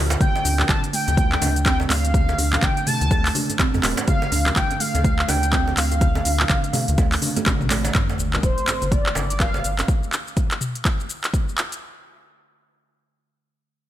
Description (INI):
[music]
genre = afro house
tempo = 124 BPM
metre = 4/4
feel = swing 60% on 16ths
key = unclear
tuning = A4 = 436 Hz
[part]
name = kalimba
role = arpeggios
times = 0.0-7.8 s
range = D3 to D4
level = -27 LUFS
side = right 4 dB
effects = sidechain pumping, ping-pong delay
[part]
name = warm sub bass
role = bass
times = 0.0-9.8 s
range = D1 to F2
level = -24 LUFS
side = equal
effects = sidechain pumping
[part]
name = afro-pop drum kit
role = drums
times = 0.1-11.8 s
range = handclaps, hi-hat, shaker, toms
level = -24 LUFS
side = equal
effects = studio reverb
[part]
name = congas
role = percussion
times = 0.1-9.9 s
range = none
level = -32 LUFS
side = left 3 dB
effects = none
[part]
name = djembe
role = percussion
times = 0.1-9.9 s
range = none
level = -31 LUFS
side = right 4 dB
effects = none
[part]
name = expressive portamento lead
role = melody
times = 0.2-9.8 s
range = C5 to A5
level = -26 LUFS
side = equal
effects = analog chorus, cassette tape, ping-pong delay
[part]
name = electronic kick drum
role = drums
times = 0.2-11.5 s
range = none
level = -21 LUFS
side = equal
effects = overdrive, studio reverb
[part]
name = sub drop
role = sound effects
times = 7.9-9.9 s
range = none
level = -32 LUFS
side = equal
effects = none
[sound]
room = digital ambience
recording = none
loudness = -18 LUFS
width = side -12 dB against mid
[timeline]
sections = 0.0-7.9 A section; 7.9-11.8 B section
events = drop 0.0-7.9; impact 7.9-9.9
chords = 0.2 Dm; 7.9 G5